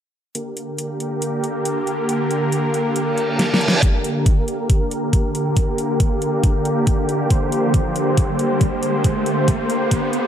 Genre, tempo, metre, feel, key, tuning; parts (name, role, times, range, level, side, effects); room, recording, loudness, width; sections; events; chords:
heavy wobble dubstep; 138 BPM; 4/4; half-time; G minor; A4 = 439 Hz
supersaw chords; sustained chords; 0.3-10.3 s; D3 to C5; -20 LUFS; equal; sidechain pumping, low-pass filter
dubstep drum kit; drums; 0.3-10.2 s; hi-hat, snare drum; -24 LUFS; equal; high-pass filter on hats, high-pass filter on snare
reverse cymbal and riser; sound effects; 3.2-10.3 s; -25 LUFS; right 1 dB
electronic kick drum; drums; 3.8-10.0 s; -17 LUFS; equal; overdrive
moderate lush hall reverb, RT60 2.0 s; dark, warm production, high-pass filter; -17 LUFS; side -9 dB against mid
0.3-3.8 A section; 3.8-10.3 B section
filter sweep on supersaw synth 0.3-3.8, 3.8-10.3; reverse cymbal 3.2-3.8; drum fill 3.4-3.8; build-up 3.8-10.3; riser 3.8-10.3
0.3 Gm